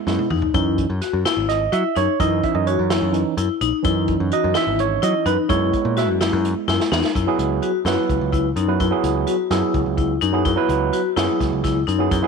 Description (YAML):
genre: progressive instrumental, band music in an uneven meter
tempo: 254 BPM (eighths)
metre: 7/8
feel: straight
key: unclear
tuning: A4 = 440 Hz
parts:
  - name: overdriven tine electric piano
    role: accompaniment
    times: 0.0-12.3 s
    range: E3 to E5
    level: -22 LUFS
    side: right 14 dB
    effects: none
  - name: vibraphone with hard mallets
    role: arpeggios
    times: 0.1-12.3 s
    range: D#4 to F#4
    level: -22 LUFS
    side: left 13 dB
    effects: none
  - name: modern bright picked electric bass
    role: bass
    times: 0.1-12.2 s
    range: G#1 to F#3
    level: -23 LUFS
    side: left 1 dB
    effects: none
  - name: unplugged drum kit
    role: drums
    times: 0.1-12.2 s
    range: hi-hat, kick drum, snare drum, toms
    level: -26 LUFS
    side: right 2 dB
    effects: none
room: light reverb, studio reverb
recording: 1960s-style stereo with parts hard left and right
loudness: -17 LUFS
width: side -5 dB against mid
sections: 0.0-7.1 A section; 7.1-12.3 B section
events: tine electric piano solo 0.0-7.1; drum fill 0.1-0.5, 6.7-7.1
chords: 0.0 F#7sus4; 0.5 C#madd9; 5.5 F#7sus4; 7.1 F#sus4